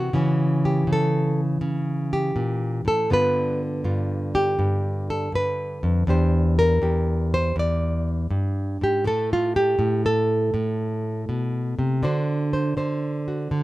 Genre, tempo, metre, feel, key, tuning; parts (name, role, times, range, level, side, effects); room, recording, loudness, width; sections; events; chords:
solo jazz; 81 BPM; 4/4; swing 67% on 8ths; G mixolydian; A4 = 440 Hz
nylon-string guitar; solo; 0.0-13.6 s; E2 to D5; -20 LUFS; equal
little or no reverb; close, detailed microphones; -20 LUFS; side -17 dB against mid
0.0-13.6 A section
nylon-string guitar solo 0.0-13.6
0.1 C#dim7; 3.1 G7; 6.1 Em7b13; 9.0 N.C.; 12.0 D7